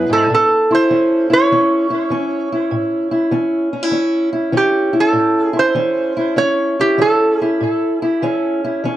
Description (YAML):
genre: acoustic country blues, solo or duo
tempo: 98 BPM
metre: 4/4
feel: swing 66% on 8ths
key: A major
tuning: A4 = 442 Hz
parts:
  - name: metal-body resonator slide guitar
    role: melody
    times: 0.0-7.5 s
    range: G4 to C#5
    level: -16 LUFS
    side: right 2 dB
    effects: tape echo
  - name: fingerpicked steel-string acoustic guitar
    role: accompaniment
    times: 0.0-9.0 s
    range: G#2 to E4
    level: -16 LUFS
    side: equal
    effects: none
room: wet spring reverb, RT60 1.3 s, small room ambience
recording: dark, warm production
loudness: -13 LUFS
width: side -13 dB against mid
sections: 0.3-9.0 A section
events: none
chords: 0.3 A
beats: | 0.29 0.90 1.51 2.12 | 2.72 3.33 3.94 4.55 | 5.16 5.77 6.38 6.99 | 7.60 8.21 8.82